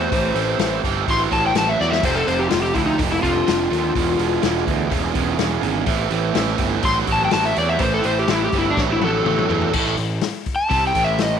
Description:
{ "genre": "blues rock power trio and southern rock", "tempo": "125 BPM", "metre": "4/4", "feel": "straight", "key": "A minor", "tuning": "A4 = 440 Hz", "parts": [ { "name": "overdriven slide guitar", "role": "melody", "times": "0.0-11.4 s", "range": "D4 to C6", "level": "-20 LUFS", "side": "left 3 dB", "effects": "slapback echo" }, { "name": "overdriven tonewheel organ", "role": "sustained chords", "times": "0.0-9.7 s", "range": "B3 to E5", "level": "-30 LUFS", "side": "right 8 dB", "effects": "chorus vibrato, slow rotary speaker" }, { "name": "overdriven semi-hollow guitar", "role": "riff", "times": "0.0-11.4 s", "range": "E2 to F#3", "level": "-23 LUFS", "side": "right 12 dB", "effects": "none" }, { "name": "fuzz picked electric bass", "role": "bass", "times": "0.0-11.4 s", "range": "E1 to E2", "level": "-24 LUFS", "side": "equal", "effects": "overdrive" }, { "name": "vintage drum kit", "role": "drums", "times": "0.1-11.3 s", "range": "crash cymbal, hi-hat, kick drum, snare drum, toms", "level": "-25 LUFS", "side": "left 4 dB", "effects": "none" } ], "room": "moderate echo chamber reverb, RT60 1.4 s, studio reverb", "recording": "1960s-style stereo", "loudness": "-17 LUFS", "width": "side -8 dB against mid", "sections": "0.0-9.7 A section; 9.7-11.4 B section", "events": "electric slide guitar solo 0.0-9.7; drum fill 1.8, 8.8-9.7", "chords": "0.0 Am7; 2.0 Fmaj7; 3.9 E7b9; 5.9 Am7; 9.7 Am", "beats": "| 0.12 0.59 1.07 1.55 | 2.03 2.51 2.99 3.47 | 3.95 4.43 4.91 5.39 | 5.87 6.35 6.83 7.32 | 7.80 8.28 8.77 9.25 | 9.73 10.22 10.70 11.19" }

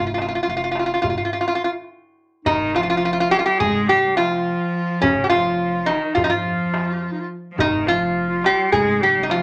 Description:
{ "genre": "Turkish makam ensemble", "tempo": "211 BPM (eighths)", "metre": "9/8", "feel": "straight", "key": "F makam ussak", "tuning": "A4 = 440 Hz", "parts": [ { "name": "metal-body resonator slide guitar", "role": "melody", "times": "0.0-9.4 s", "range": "Db4 to Ab4", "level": "-21 LUFS", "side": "equal", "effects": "none" }, { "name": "upright bass", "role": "bass", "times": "0.0-9.4 s", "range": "F1 to F2", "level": "-37 LUFS", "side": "equal", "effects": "none" }, { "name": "darbuka", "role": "percussion", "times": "0.2-9.4 s", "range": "none", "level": "-31 LUFS", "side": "equal", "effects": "none" }, { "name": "bright cello", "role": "second line", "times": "2.5-9.4 s", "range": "Db3 to Ab3", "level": "-27 LUFS", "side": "equal", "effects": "none" }, { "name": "clear clarinet", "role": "second line", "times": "2.5-9.4 s", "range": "Db4 to Ab4", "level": "-30 LUFS", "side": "equal", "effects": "none" } ], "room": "wet small room reverb, RT60 0.6 s", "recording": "none", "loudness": "-20 LUFS", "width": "mono", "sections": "0.0-2.5 A section; 2.5-9.4 B section", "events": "break 1.2-2.5", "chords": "none", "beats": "0.18 0.47 0.75 1.04 1.32 1.60 1.89 2.17 | 2.46 2.74 3.03 3.31 3.60 3.88 4.17 4.45 4.74 | 5.02 5.31 5.59 5.88 6.16 6.44 6.73 7.01 7.30 | 7.58 7.87 8.15 8.44 8.72 9.00 9.29" }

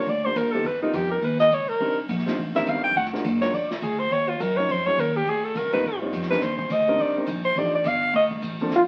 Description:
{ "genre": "jazz, small-group swing and bop", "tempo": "208 BPM", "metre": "4/4", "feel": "swing 60% on 8ths", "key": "Bb major", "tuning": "A4 = 441 Hz", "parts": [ { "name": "clear alto saxophone", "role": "second line", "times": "0.0-8.3 s", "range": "D#4 to G5", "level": "-25 LUFS", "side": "equal", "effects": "none" }, { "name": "dark baby grand piano", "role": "accompaniment", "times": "0.0-8.7 s", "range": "F3 to Db5", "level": "-31 LUFS", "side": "equal", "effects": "none" }, { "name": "upright bass", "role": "bass", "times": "0.0-8.9 s", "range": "Eb1 to G2", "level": "-32 LUFS", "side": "equal", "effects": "none" }, { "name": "jazz brush drum kit", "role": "drums", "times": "0.1-8.9 s", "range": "brushed snare drum, hi-hat, kick drum, ride cymbal, snare drum", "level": "-38 LUFS", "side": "equal", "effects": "none" }, { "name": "warm trombone", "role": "melody", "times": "8.8 s", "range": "F4", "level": "-18 LUFS", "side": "equal", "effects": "none" } ], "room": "wet studio reverb, RT60 0.7 s", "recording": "very old 78 rpm record, vinyl crackle", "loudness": "-24 LUFS", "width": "mono", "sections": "0.0-8.7 A section", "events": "alto saxophone solo 0.0-8.7", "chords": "0.0 Bb6; 0.7 G7alt; 1.8 Cm9; 3.0 Bb7b13; 4.1 Ebm9; 5.3 Dm7b5; 5.8 G7alt; 6.4 Cm9; 7.6 F13", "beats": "0.08 0.36 | 0.65 0.94 1.23 1.52 | 1.80 2.09 2.38 2.67 | 2.96 3.25 3.54 3.82 | 4.11 4.40 4.69 4.97 | 5.26 5.55 5.84 6.13 | 6.41 6.70 6.99 7.28 | 7.57 7.85 8.14 8.43 | 8.72" }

